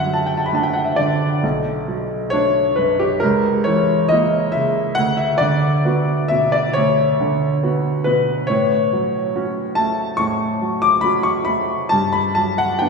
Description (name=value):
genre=classical, romantic nocturne for solo piano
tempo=69 BPM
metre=4/4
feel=uneven beats, rubato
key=unclear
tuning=A4 = 440 Hz
part: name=clear concert grand piano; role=solo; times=0.0-12.9 s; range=B1 to D6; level=-16 LUFS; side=equal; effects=none
room=wet church reverb, RT60 2.9 s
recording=recorded in a church or concert hall, studio ambience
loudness=-16 LUFS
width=side -4 dB against mid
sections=0.0-12.9 A section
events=none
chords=0.0 D/F#; 1.4 Bm7; 3.2 A#dim/C#; 5.0 Bm/D; 8.5 F#m/A; 11.9 Gmaj7